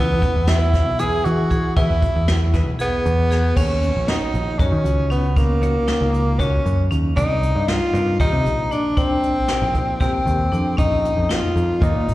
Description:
progressive instrumental, band music in an uneven meter; 233 BPM (eighths); 7/8; straight; A4 = 440 Hz
breathy tenor saxophone; melody; 0.0-12.1 s; Bb3 to G#4; -21 LUFS; equal; slapback echo, tape echo
vibraphone with hard mallets; arpeggios; 0.0-12.1 s; Db4 to D5; -29 LUFS; left 2 dB
picked electric bass; bass; 0.0-12.1 s; Ab1 to E3; -20 LUFS; equal
jazz brush drum kit; drums; 0.2-12.1 s; crash cymbal, hi-hat, kick drum, snare drum; -22 LUFS; equal
vintage hollow-body jazz guitar; accompaniment; 0.5-12.0 s; Bb2 to Db5; -31 LUFS; left 1 dB; slapback echo
light reverb, small room ambience; live gig heard through the venue's PA, recital hall reverb; -16 LUFS; side -16 dB against mid
0.0-3.6 A section; 3.6-12.1 B section
0.0 E; 3.6 Ebm7; 7.2 Cm7; 10.8 Bbsus4
0.23 0.48 0.74 1.00 1.25 1.51 | 1.77 2.02 2.28 2.54 2.79 3.05 3.31 | 3.56 3.82 4.08 4.33 4.59 4.85 5.11 | 5.36 5.62 5.88 6.14 6.39 6.65 6.91 | 7.17 7.42 7.68 7.94 8.20 8.46 8.71 | 8.97 9.23 9.49 9.75 10.00 10.26 10.52 | 10.78 11.04 11.29 11.55 11.81 12.07

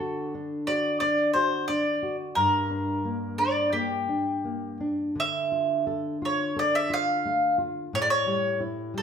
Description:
fado-style ballad; 88 BPM; 4/4; rubato; G harmonic minor, D harmonic minor from 5.2 s; A4 = 443 Hz
mandolin; melody; 0.0-9.0 s; G4 to F5; -25 LUFS; equal
nylon-string guitar; accompaniment; 0.0-9.0 s; G2 to A4; -30 LUFS; left 1 dB
wet large studio reverb, RT60 1.1 s; band playing live in one room; -24 LUFS; side -7 dB against mid
0.0-5.2 A section; 5.2-9.0 B section
0.0 D; 2.4 Gm; 5.2 Dmadd9; 7.9 A7
0.32 1.00 1.68 | 2.36 3.05 3.74 4.45 | 5.17 5.87 6.56 7.25 | 7.93 8.61

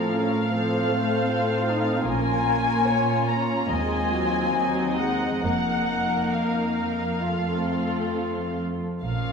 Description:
classical, slow romantic movement for string orchestra; 64-80 BPM; 4/4; rubato; A4 = 440 Hz
muted symphonic violin section; melody; 0.0-9.3 s; F5 to Bb5; -27 LUFS; left 2 dB
muted chamber violin section; second line; 0.0-9.3 s; Eb4 to Eb5; -29 LUFS; equal
muted studio viola section; accompaniment; 0.0-9.3 s; F3 to F4; -27 LUFS; left 1 dB
muted symphonic cello section; bass; 0.0-9.3 s; Eb2 to Bb2; -29 LUFS; right 2 dB
muted symphonic double bass section; bass; 2.1-9.3 s; F1 to Eb2; -32 LUFS; right 2 dB
wet scoring stage reverb, RT60 1.9 s; minimal, uncompressed stereo recording; -22 LUFS; side -6 dB against mid
0.0-9.3 A section
0.0 F/A; 0.5 F7/A; 2.1 Bbm; 3.7 Ebm; 5.4 Fsus4; 7.2 F
0.51 1.26 | 2.06 2.89 3.71 4.54 | 5.42 6.32 7.23 8.14 | 9.04

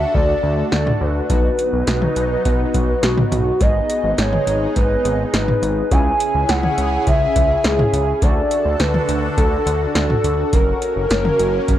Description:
synth-pop; 104 BPM; 4/4; straight; A4 = 440 Hz
hollow clarinet-like synth lead; melody; 0.0-11.8 s; F#4 to G#5; -20 LUFS; equal; chorus, dub echo
mellow synth brass; accompaniment; 0.0-11.8 s; A3 to A#4; -25 LUFS; right 1 dB; chorus, phaser, dub echo
lush unison pad; sustained chords; 0.0-11.8 s; C#3 to A4; -27 LUFS; equal; chorus, phaser
fat analog bass; bass; 0.0-11.8 s; F#1 to D2; -21 LUFS; equal
electro analog drum machine; drums; 0.1-11.8 s; hi-hat, kick drum, snare drum, toms; -19 LUFS; equal
light reverb, digital ambience; echo-heavy mix; -15 LUFS; side -12 dB against mid
0.0-11.8 A section
0.0 D; 1.3 B; 3.6 G#m; 5.9 C#m; 8.2 D; 10.5 F#
0.14 0.72 | 1.30 1.88 2.45 3.03 | 3.61 4.18 4.76 5.34 | 5.91 6.49 7.07 7.64 | 8.22 8.80 9.38 9.95 | 10.53 11.11 11.68

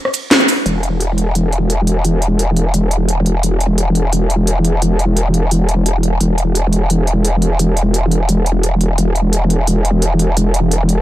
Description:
dark technical drum and bass; 173 BPM; 4/4; straight; A4 = 440 Hz
drum and bass drum kit; drums; 0.1-11.0 s; cabasa, hi-hat, ride cymbal, rim click, snare drum; -17 LUFS; equal
growl bass; bass; 0.7-11.0 s; E1; -13 LUFS; equal; chorus, overdrive
little or no reverb; dark, warm production; -12 LUFS; side -14 dB against mid
0.7-11.0 A section
break 0.0-0.7; band accent 0.3
0.31 | 0.66 1.00 1.35 1.70 | 2.04 2.39 2.74 3.08 | 3.43 3.78 4.13 4.47 | 4.82 5.17 5.51 5.86 | 6.21 6.55 6.90 7.25 | 7.59 7.94 8.29 8.63 | 8.98 9.33 9.68 10.02 | 10.37 10.71

